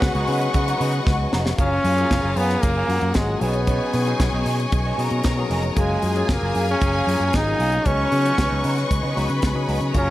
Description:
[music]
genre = disco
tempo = 115 BPM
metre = 4/4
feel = straight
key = F# major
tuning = A4 = 440 Hz
[part]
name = warm symphonic violin section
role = second line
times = 0.0-10.1 s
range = E#4 to C#6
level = -30 LUFS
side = left 2 dB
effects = none
[part]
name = electric guitar through a small old amp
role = accompaniment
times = 0.0-10.1 s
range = F#3 to G#4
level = -31 LUFS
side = right 4 dB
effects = wah
[part]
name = tine electric piano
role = accompaniment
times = 0.0-10.1 s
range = F#3 to G#4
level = -29 LUFS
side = left 5 dB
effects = fast stereo tremolo
[part]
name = clear symphonic string section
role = sustained chords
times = 0.0-10.1 s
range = B3 to C#6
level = -29 LUFS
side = left 2 dB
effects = none
[part]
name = clear horn section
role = stabs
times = 0.0-1.3 s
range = G#3 to B4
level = -29 LUFS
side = right 2 dB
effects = none
[part]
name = fingered electric bass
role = bass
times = 0.0-10.1 s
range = E#1 to C#3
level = -23 LUFS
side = equal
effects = none
[part]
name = tight funk drum kit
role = drums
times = 0.0-10.1 s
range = hi-hat, kick drum, snare drum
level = -24 LUFS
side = equal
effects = none
[part]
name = brilliant trombone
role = melody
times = 1.6-10.1 s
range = G#3 to D#4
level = -23 LUFS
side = equal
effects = none
[sound]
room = light reverb, small room reverb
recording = none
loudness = -18 LUFS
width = side -15 dB against mid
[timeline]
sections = 0.0-1.6 A section; 1.6-10.1 B section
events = drum fill 1.1-1.6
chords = 0.0 C#9sus4; 1.6 F#maj9; 3.4 B69; 5.8 F#maj9; 7.9 C#9sus4

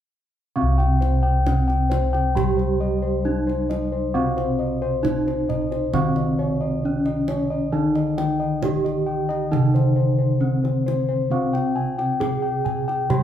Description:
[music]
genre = Javanese gamelan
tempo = 67 BPM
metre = 4/4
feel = straight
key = C pelog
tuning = A4 = 440 Hz
[part]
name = gamelan-type bronze metallophone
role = melody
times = 0.6-13.2 s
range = C4 to Ab4-20c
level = -26 LUFS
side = right 1 dB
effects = none
[part]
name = gamelan-type bronze metallophone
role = accompaniment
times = 0.6-13.2 s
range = C3 to G3-30c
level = -27 LUFS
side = equal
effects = none
[part]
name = gamelan-type bossed gongs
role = bass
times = 0.6-13.2 s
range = C2 to Eb4-30c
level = -23 LUFS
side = equal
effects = none
[part]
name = gamelan-type bossed gongs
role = arpeggios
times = 0.8-13.1 s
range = C5 to Ab5-20c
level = -26 LUFS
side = left 4 dB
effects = none
[part]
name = kendang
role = percussion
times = 0.8-13.2 s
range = none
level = -30 LUFS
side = right 3 dB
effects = none
[sound]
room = moderate large studio reverb, RT60 1.2 s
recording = band playing live in one room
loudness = -19 LUFS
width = side -10 dB against mid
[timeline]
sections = 0.6-13.2 A section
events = none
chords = none

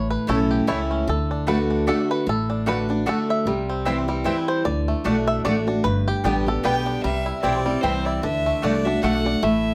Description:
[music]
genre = bluegrass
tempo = 151 BPM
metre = 3/4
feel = swing 56% on 8ths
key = unclear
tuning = A4 = 441 Hz
[part]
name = bluegrass banjo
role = melody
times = 0.0-9.7 s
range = G3 to E5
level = -29 LUFS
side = equal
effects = none
[part]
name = picked steel-string acoustic guitar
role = accompaniment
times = 0.0-9.7 s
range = G2 to G4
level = -25 LUFS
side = equal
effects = none
[part]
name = upright bass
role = bass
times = 0.0-9.7 s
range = G1 to D2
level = -30 LUFS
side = equal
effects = none
[part]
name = mandolin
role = stabs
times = 0.3-9.1 s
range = A3 to A5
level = -30 LUFS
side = equal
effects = none
[part]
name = clear fiddle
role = melody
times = 6.6-9.7 s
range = C5 to G5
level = -29 LUFS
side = equal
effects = none
[sound]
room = moderate small room reverb, RT60 0.5 s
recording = none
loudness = -22 LUFS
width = mono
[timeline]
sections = 0.0-7.0 A section; 7.0-9.7 B section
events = five-string banjo solo 0.0-7.0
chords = 0.0 A; 1.1 D; 3.5 C; 4.7 D; 5.8 G; 7.0 C; 8.2 D

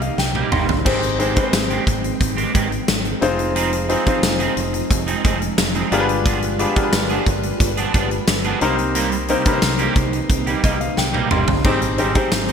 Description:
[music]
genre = 1980s-style pop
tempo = 89 BPM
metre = 4/4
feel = straight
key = C minor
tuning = A4 = 440 Hz
[part]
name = warm grand piano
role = accompaniment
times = 0.0-12.5 s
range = C4 to C6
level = -22 LUFS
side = left 3 dB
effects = none
[part]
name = ensemble organ-string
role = sustained chords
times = 0.0-12.5 s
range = C3 to G5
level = -26 LUFS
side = right 1 dB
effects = phaser, ensemble chorus
[part]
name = electric guitar at the edge of break-up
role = riff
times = 0.0-12.5 s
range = Eb3 to Ab4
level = -24 LUFS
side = right 6 dB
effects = ensemble chorus
[part]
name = fingered electric bass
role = bass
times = 0.0-12.5 s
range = F1 to C2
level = -25 LUFS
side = equal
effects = none
[part]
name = huge arena drum kit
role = drums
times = 0.0-12.5 s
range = crash cymbal, hi-hat, kick drum, snare drum, tambourine, toms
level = -20 LUFS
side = equal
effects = gated reverb
[sound]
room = moderate plate reverb, RT60 2.1 s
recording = bright 1980s-style digital production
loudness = -16 LUFS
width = side -7 dB against mid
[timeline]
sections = 0.9-12.5 A section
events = grand piano fill 0.0-0.9, 10.3-11.6; drum fill 0.2-0.9, 11.0-11.6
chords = 0.0 Cm7; 0.9 Abmaj7; 3.2 Fm7; 5.9 G7b9; 8.6 Cm7; 11.6 Abmaj7

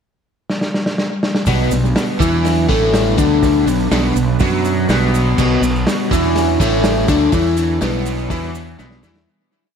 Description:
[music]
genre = psychedelic rock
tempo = 123 BPM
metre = 4/4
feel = straight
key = B minor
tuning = A4 = 442 Hz
[part]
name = vintage drum kit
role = drums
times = 0.5-9.3 s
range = crash cymbal, hi-hat, kick drum, snare drum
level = -20 LUFS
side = equal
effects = tape echo
[part]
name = string machine, cellos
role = sustained chords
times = 1.5-9.2 s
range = F#3 to C#5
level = -24 LUFS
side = right 3 dB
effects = ensemble chorus
[part]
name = overdriven electric guitar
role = riff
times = 1.5-9.3 s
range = A2 to F#4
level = -16 LUFS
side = left 2 dB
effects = phaser, tape echo
[part]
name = fuzz fingered electric bass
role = bass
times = 1.5-9.3 s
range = A1 to F#2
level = -19 LUFS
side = right 1 dB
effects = overdrive
[part]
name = maracas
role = percussion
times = 1.5-9.2 s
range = none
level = -36 LUFS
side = right 11 dB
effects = tape echo
[sound]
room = light reverb, small room ambience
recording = echo-heavy mix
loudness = -13 LUFS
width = side -7 dB against mid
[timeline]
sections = 0.0-1.5 pickup bar; 1.5-9.3 riff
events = drum fill 0.5-1.5, 8.8-9.3; fade-out 7.3-9.3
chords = 0.0 N.C.; 1.5 Bm

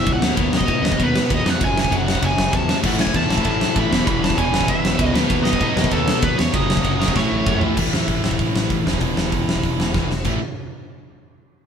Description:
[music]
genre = punk rock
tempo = 195 BPM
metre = 4/4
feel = straight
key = A lydian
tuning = A4 = 440 Hz
[part]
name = nasal lead guitar with a parked wah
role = melody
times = 0.0-7.6 s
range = A4 to B5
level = -24 LUFS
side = right 1 dB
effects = overdrive
[part]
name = overdriven electric guitar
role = riff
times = 0.0-7.8 s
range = E2 to B3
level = -24 LUFS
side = right 1 dB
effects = none
[part]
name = sludgy distorted guitar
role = riff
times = 0.0-10.4 s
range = E2 to B3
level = -24 LUFS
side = left 7 dB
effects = overdrive
[part]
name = modern bright picked electric bass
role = bass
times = 0.1-10.4 s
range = E1 to A2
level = -25 LUFS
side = equal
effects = none
[part]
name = big rock drum kit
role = drums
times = 0.1-10.3 s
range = crash cymbal, hi-hat, kick drum, ride cymbal, snare drum, toms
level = -21 LUFS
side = equal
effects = none
[part]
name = tight distorted guitar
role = riff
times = 2.8-10.4 s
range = E2 to B3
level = -26 LUFS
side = right 9 dB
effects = distortion
[sound]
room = light reverb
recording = band playing live in one room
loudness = -16 LUFS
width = side -7 dB against mid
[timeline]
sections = 0.0-7.8 A section; 7.8-10.3 B section; 10.3-11.5 C section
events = drum fill 7.1-7.8, 9.9-10.3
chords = 0.2 B/D#; 1.6 F#5; 2.8 A5; 3.9 E; 5.1 B/D#; 6.5 F#5; 7.1 A; 7.8 A5; 8.9 E5; 10.3 A5

